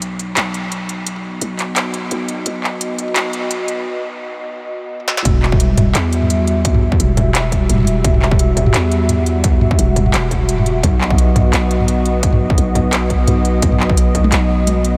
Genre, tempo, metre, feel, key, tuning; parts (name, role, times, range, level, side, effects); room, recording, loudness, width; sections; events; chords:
half-time drum and bass; 172 BPM; 4/4; swing 55% on 16ths, half-time; E harmonic minor; A4 = 438 Hz
dark analog pad; sustained chords; 0.0-15.0 s; G3 to E5; -23 LUFS; equal; chorus, sidechain pumping
growling 808-style bass; bass; 0.0-15.0 s; E1 to E2; -20 LUFS; equal
industrial drum kit; drums; 0.0-14.9 s; handclaps, hi-hat, snare drum, toms; -22 LUFS; equal; high-pass filter on hats, high-pass filter on toms, high-pass filter on snare
electronic kick drum; drums; 5.3-14.2 s; -18 LUFS; equal; distortion
moderate huge ambient reverb, RT60 8.1 s; dreamy mix soaked in reverb, high-pass filter; -16 LUFS; mono
0.0-5.3 A section; 5.3-15.0 B section
build-up 0.0-5.3; filter sweep on analog synth pad 0.0-5.3; break 3.9-5.3; drum fill 5.0; drop 5.3-15.0
0.0 B; 5.3 Emadd9; 10.8 B